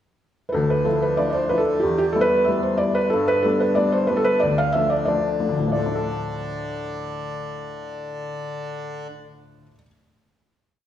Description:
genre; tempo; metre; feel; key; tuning
celtic folk, Celtic reel; 186 BPM; 4/4; swing 55% on 8ths; D dorian; A4 = 440 Hz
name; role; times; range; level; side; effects
felt-muted upright piano; melody; 0.5-9.7 s; G4 to F5; -20 LUFS; right 1 dB; none
warm upright piano; accompaniment; 0.5-9.9 s; D2 to A4; -25 LUFS; left 2 dB; none
accordion; drone; 0.5-9.1 s; D3 to D4; -32 LUFS; left 2 dB; none
room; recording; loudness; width
wet recital hall reverb, RT60 1.3 s; recorded in a church or concert hall; -19 LUFS; side -10 dB against mid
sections
0.0-0.5 pickup bar; 0.5-5.7 A section; 5.7-8.3 final chord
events
none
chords
0.0 N.C.; 0.5 Dmadd9; 1.8 Em; 3.1 G; 4.4 Dm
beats
0.22 | 0.54 0.86 1.19 1.51 | 1.83 2.16 2.48 2.80 | 3.13 3.45 3.77 4.10 | 4.42 4.75 5.07 5.39 | 5.71 6.03 6.36 6.68 | 7.00 7.32 7.64 7.96

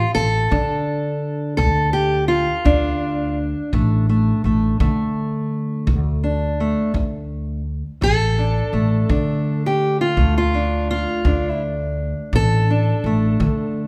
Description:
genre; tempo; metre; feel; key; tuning
acoustic country blues, solo or duo; 56 BPM (dotted quarters); 12/8; straight; D minor; A4 = 440 Hz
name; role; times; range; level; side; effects
fingerpicked steel-string acoustic guitar; melody; 0.0-13.9 s; D2 to A4; -23 LUFS; equal; none
upright bass; bass; 0.0-13.9 s; A1 to D3; -23 LUFS; equal; none
kick drum; drums; 0.5-13.6 s; none; -26 LUFS; equal; none
room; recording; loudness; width
moderate recital hall reverb, RT60 1.5 s; recorded in a church or concert hall; -20 LUFS; mono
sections
0.0-6.9 A section; 6.9-13.9 B section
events
steel-string acoustic guitar solo 6.9-13.9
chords
0.0 D5; 6.9 Dm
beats
0.52 1.59 | 2.66 3.73 4.80 5.88 | 6.95 8.02 9.10 10.17 | 11.25 12.33 13.40

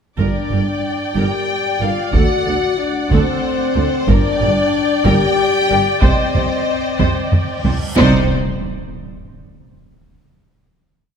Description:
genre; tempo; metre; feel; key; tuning
cinematic, epic orchestral film score; 62 BPM (dotted quarters); 6/8; straight; C dorian; A4 = 440 Hz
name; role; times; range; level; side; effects
warm symphonic violin section; melody; 0.2-8.3 s; C5 to G5; -22 LUFS; left 4 dB; none
dark symphonic violin section; second line; 0.2-8.3 s; C5 to G5; -25 LUFS; left 1 dB; none
rich symphonic viola section; accompaniment; 0.2-8.3 s; Eb4 to D5; -24 LUFS; right 1 dB; none
mellow French horn section; sustained chords; 0.2-8.3 s; C4 to G4; -21 LUFS; left 6 dB; none
rich symphonic double bass section; bass; 0.2-8.3 s; G1 to D2; -21 LUFS; right 4 dB; none
warm studio cello section; bass; 0.2-8.3 s; D2 to C3; -22 LUFS; right 3 dB; none
taiko ensemble; drums; 0.2-7.9 s; none; -18 LUFS; equal; none
reverse cymbal and impact; sound effects; 7.6-9.9 s; none; -27 LUFS; equal; none
room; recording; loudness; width
moderate concert hall reverb, RT60 2.1 s; none; -14 LUFS; side -7 dB against mid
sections
0.2-8.0 theme; 8.0-9.9 final chord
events
drum fill 7.0-8.0; reverse cymbal 7.6-8.0; impact 8.0-9.9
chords
0.2 Gm; 2.1 D7; 4.1 Gm; 6.0 Cmadd9; 8.0 Cm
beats
| 0.19 1.17 | 2.14 3.11 | 4.08 5.05 | 6.03 7.00 | 7.97 8.94

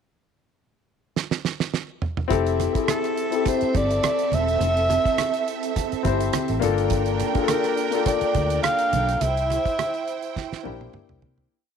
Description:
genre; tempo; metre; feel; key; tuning
lush 1970s-style soul; 104 BPM; 4/4; swing 54% on 16ths; F major; A4 = 439 Hz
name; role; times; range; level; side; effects
damped 70s drum kit; drums; 1.2-11.5 s; hi-hat, kick drum, rim click, snare drum, toms; -27 LUFS; right 4 dB; none
warm studio string section; second line; 2.3-11.5 s; C4 to G5; -28 LUFS; right 13 dB; none
warm grand piano; accompaniment; 2.3-11.5 s; Bb3 to C5; -25 LUFS; left 12 dB; none
vintage muted fingered electric bass; bass; 2.3-11.5 s; E1 to C3; -26 LUFS; equal; none
congas; percussion; 2.3-11.4 s; none; -32 LUFS; right 8 dB; none
warm alto saxophone; melody; 2.9-10.9 s; A4 to F5; -24 LUFS; equal; none
room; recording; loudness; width
light reverb, small room ambience; 1960s-style stereo with parts hard left and right; -20 LUFS; side -7 dB against mid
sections
0.0-2.3 pickup bar; 2.3-11.5 verse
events
drum fill 1.2-2.3, 10.4-11.5; fade-out 9.2-11.5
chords
0.0 N.C.; 2.3 Fmaj7; 6.6 Gm7; 9.2 C7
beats
| 0.01 0.58 1.16 1.73 | 2.31 2.89 3.46 4.04 | 4.61 5.19 5.76 6.34 | 6.91 7.49 8.06 8.64 | 9.21 9.79 10.36 10.94

